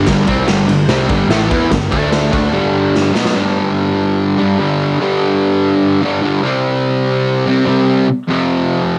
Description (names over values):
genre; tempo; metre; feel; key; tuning
garage rock duo or trio; 146 BPM; 4/4; straight; G mixolydian; A4 = 439 Hz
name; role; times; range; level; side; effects
fuzz guitar; riff; 0.0-9.0 s; F2 to E4; -15 LUFS; equal; distortion, cassette tape
fuzz picked electric bass; bass; 0.0-2.5 s; G1 to E2; -21 LUFS; equal; overdrive
raw garage drum kit; drums; 0.1-3.3 s; kick drum, ride cymbal, snare drum; -21 LUFS; equal; cassette tape
room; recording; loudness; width
light reverb; home recording on cassette; -14 LUFS; mono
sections
0.0-3.4 A section; 3.4-9.0 B section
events
drum fill 2.9-3.4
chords
0.0 G5; 1.9 D5; 2.3 G; 3.4 G5; 6.4 C5; 8.3 F5